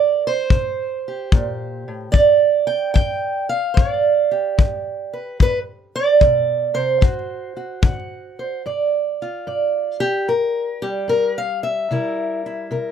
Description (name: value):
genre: acoustic country blues, solo or duo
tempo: 74 BPM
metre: 4/4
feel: swing 68% on 8ths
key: unclear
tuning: A4 = 440 Hz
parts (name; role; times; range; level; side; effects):
- fingerpicked steel-string acoustic guitar; melody; 0.0-12.9 s; G2 to G5; -18 LUFS; right 4 dB; none
- kick drum; drums; 0.5-8.1 s; none; -16 LUFS; left 3 dB; none
room: little or no reverb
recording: close, detailed microphones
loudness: -17 LUFS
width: side -8 dB against mid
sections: 0.0-8.6 A section; 8.6-12.9 B section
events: steel-string acoustic guitar solo 8.6-12.9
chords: 0.0 C5; 2.1 G7(no3); 7.0 D7; 8.6 G5; 11.9 C7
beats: 0.51 1.32 | 2.14 2.96 3.77 4.58 | 5.40 6.21 7.02 7.84 | 8.65 9.46 10.27 11.08 | 11.90 12.71